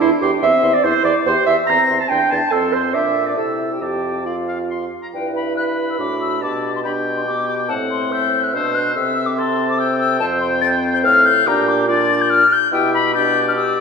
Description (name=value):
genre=quick classical-period movement for wind quintet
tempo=142 BPM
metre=3/4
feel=straight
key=F major, G major from 5.1 s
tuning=A4 = 440 Hz
part: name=mellow hollow silver concert flute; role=melody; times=0.0-13.8 s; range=E5 to Bb6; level=-19 LUFS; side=left 5 dB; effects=none
part: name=clear oboe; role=second line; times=0.0-13.8 s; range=C5 to E6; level=-25 LUFS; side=left 2 dB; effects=none
part: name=mellow clarinet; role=accompaniment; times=0.0-13.8 s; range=E4 to Bb5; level=-20 LUFS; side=right 4 dB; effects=none
part: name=warm French horn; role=accompaniment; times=0.0-13.8 s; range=B3 to G4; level=-24 LUFS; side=equal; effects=none
part: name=warm bassoon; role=bass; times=0.0-13.8 s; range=E2 to C3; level=-24 LUFS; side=right 2 dB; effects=none
room=wet concert hall reverb, RT60 2.1 s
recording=recorded in a church or concert hall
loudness=-15 LUFS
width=side -5 dB against mid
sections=0.0-5.1 A section; 5.1-13.8 B section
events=none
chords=0.0 C/E; 2.5 F; 3.0 Bb; 3.4 C; 3.8 F; 5.1 G; 6.4 G/B; 7.7 Am; 9.0 Am/C; 10.2 F; 11.5 Gm/Bb; 12.7 G/B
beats=| 0.01 0.43 0.85 | 1.27 1.69 2.11 | 2.53 2.95 3.38 | 3.82 4.27 4.71 | 5.14 5.57 6.00 | 6.42 6.84 7.27 | 7.69 8.12 8.54 | 8.96 9.38 9.80 | 10.22 10.63 11.05 | 11.47 11.89 12.30 | 12.72 13.15 13.57